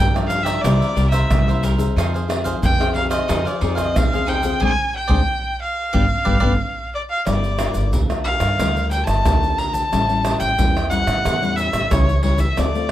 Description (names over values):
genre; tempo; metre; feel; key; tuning
samba and choro; 90 BPM; 4/4; straight; unclear; A4 = 440 Hz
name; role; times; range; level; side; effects
rich erhu; melody; 0.0-12.9 s; C#5 to Bb5; -22 LUFS; equal; none
cavaquinho; accompaniment; 0.0-6.5 s; Eb4 to G5; -28 LUFS; right 3 dB; none
nylon-string guitar; accompaniment; 0.0-12.9 s; G2 to Bb4; -25 LUFS; left 6 dB; none
upright bass; bass; 0.0-12.9 s; G1 to A2; -21 LUFS; equal; none
egg shaker, pandeiro, tamborim and surdo; percussion; 0.2-12.9 s; none; -22 LUFS; right 1 dB; none
room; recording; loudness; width
light reverb; close, detailed microphones; -16 LUFS; side -13 dB against mid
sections
0.0-7.3 A section; 7.3-12.9 B section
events
band accent 4.6-7.3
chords
0.0 Gm7; 0.6 C7; 2.0 Fm7; 4.6 Dm7b5; 5.9 G7; 7.3 Gm7; 9.9 A7